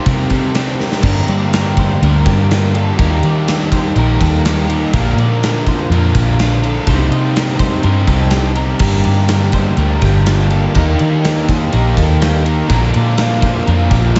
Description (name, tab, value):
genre	rock, shoegaze and dream pop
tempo	124 BPM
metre	4/4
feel	straight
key	G minor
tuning	A4 = 439 Hz
part	twelve-string electric guitar	arpeggios	0.0-14.2 s	F4 to Eb5	-28 LUFS	equal	ensemble chorus, analog delay
part	overdriven electric guitar	riff	0.0-14.2 s	G2 to Bb4	-23 LUFS	equal	reverse reverb
part	raw garage guitar	riff	0.0-14.2 s	G2 to Bb4	-22 LUFS	equal	overdrive, subtle chorus
part	sludgy distorted guitar	riff	0.0-14.2 s	G2 to Eb4	-24 LUFS	equal	none
part	vintage muted fingered electric bass	bass	0.1-14.2 s	G1 to G3	-18 LUFS	equal	none
part	gated 80s drum kit	drums	0.1-14.2 s	crash cymbal, kick drum, ride cymbal, snare drum	-21 LUFS	equal	none
room	moderate huge ambient reverb, RT60 4.5 s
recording	dreamy mix soaked in reverb, nothing above 7.9 kHz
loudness	-14 LUFS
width	mono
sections	0.0-1.0 A section; 1.0-14.2 B section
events	drum fill 0.8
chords	0.0 Cm7; 1.0 Gm7; 3.0 Ebmaj7; 4.9 Bb; 6.9 Cm7; 8.8 Gm7; 10.7 Ebmaj7; 12.7 Bb